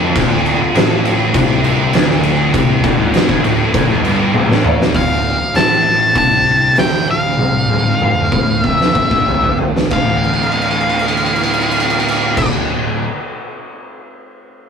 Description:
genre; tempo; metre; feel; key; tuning
stoner and doom metal; 92-100 BPM; 4/4; straight; D minor; A4 = 440 Hz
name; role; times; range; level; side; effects
ensemble organ-string; sustained chords; 0.0-12.5 s; D3 to A4; -27 LUFS; left 1 dB; none
scooped high-gain guitar; riff; 0.0-5.0 s; D2 to C3; -20 LUFS; left 1 dB; distortion
thick fuzz guitar; riff; 0.0-13.0 s; D2 to D3; -23 LUFS; left 2 dB; distortion
thick fuzz guitar; riff; 0.0-13.0 s; D2 to D3; -22 LUFS; right 3 dB; distortion
fuzz picked electric bass; bass; 0.0-12.5 s; D1 to C2; -25 LUFS; equal; none
oversized low-tuned drum kit; drums; 0.2-14.0 s; crash cymbal, hi-hat, kick drum, ride cymbal, snare drum, toms; -15 LUFS; equal; none
octave-fuzz lead guitar; melody; 5.0-12.5 s; F5 to A5; -15 LUFS; equal; distortion
room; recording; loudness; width
moderate small room reverb, RT60 0.5 s; rough rehearsal-room recording, tube saturation; -12 LUFS; side -6 dB against mid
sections
0.0-5.0 A section; 5.0-9.9 B section; 9.9-12.5 C section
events
drum fill 4.3-5.0, 7.4-9.9, 10.3-12.4; slowing down 5.0-9.9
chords
0.0 Dm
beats
| 0.16 0.76 1.35 1.95 | 2.55 3.15 3.75 4.35 | 4.95 5.55 6.16 6.77 | 7.39 8.01 8.64 9.28 | 9.93 10.58 11.23 11.89

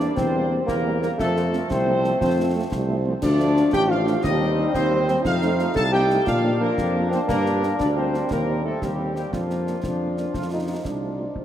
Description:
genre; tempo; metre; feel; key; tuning
military-style march for wind band; 118 BPM (dotted quarters); 6/8; straight; F major, Bb major from 3.2 s; A4 = 440 Hz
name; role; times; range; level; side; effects
dark trumpet section; melody; 0.0-11.2 s; F4 to A5; -31 LUFS; equal; none
warm euphonium; second line; 0.0-11.4 s; F3 to A4; -24 LUFS; left 1 dB; none
mellow French horn section; accompaniment; 0.0-11.2 s; F3 to F4; -32 LUFS; right 3 dB; none
warm trombone section; sustained chords; 0.0-11.3 s; F3 to F4; -29 LUFS; right 1 dB; none
warm tuba; bass; 0.0-11.4 s; A1 to Bb2; -25 LUFS; equal; none
concert snare drum, concert bass drum and clash cymbals; drums; 0.0-11.4 s; none; -32 LUFS; right 1 dB; none
room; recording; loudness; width
wet cathedral reverb, RT60 5.4 s; in a vast, echoing space; -20 LUFS; side -10 dB against mid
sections
0.0-11.4 A section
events
none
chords
0.0 C7/E; 1.2 F; 3.2 Dm; 4.2 Cm/Eb; 5.3 F7; 6.3 Bb; 7.3 Gm; 8.3 Cm/Eb; 9.3 Bb/F; 10.3 F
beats
| 0.17 0.68 | 1.19 1.70 | 2.21 2.71 | 3.22 3.73 | 4.24 4.75 | 5.25 5.76 | 6.27 6.78 | 7.29 7.80 | 8.30 8.81 | 9.32 9.83 | 10.34 10.85 | 11.36

